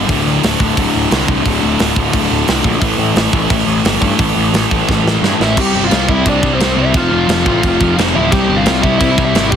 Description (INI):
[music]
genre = punk rock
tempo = 175 BPM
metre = 4/4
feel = straight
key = unclear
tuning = A4 = 438 Hz
[part]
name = distorted electric guitar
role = riff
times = 0.0-9.6 s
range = D2 to C4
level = -18 LUFS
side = right 17 dB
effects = distortion
[part]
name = sludgy distorted guitar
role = riff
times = 0.0-9.6 s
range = D2 to C4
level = -17 LUFS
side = left 11 dB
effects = overdrive
[part]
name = fuzz picked electric bass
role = bass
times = 0.0-9.6 s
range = D1 to A2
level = -18 LUFS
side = right 1 dB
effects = overdrive
[part]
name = tight metal drum kit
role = drums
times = 0.1-9.6 s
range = crash cymbal, hi-hat, kick drum, snare drum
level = -17 LUFS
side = right 1 dB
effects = none
[part]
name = bluesy overdriven lead guitar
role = melody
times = 5.4-9.6 s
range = C4 to G5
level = -17 LUFS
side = equal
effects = distortion
[sound]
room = light reverb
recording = heavily compressed radio sound, multiband compression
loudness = -11 LUFS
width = side -8 dB against mid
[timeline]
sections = 0.0-5.6 A section; 5.6-9.6 B section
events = drum fill 4.9-5.6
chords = 0.1 D5; 2.8 A5; 5.6 C; 7.0 F5; 8.3 C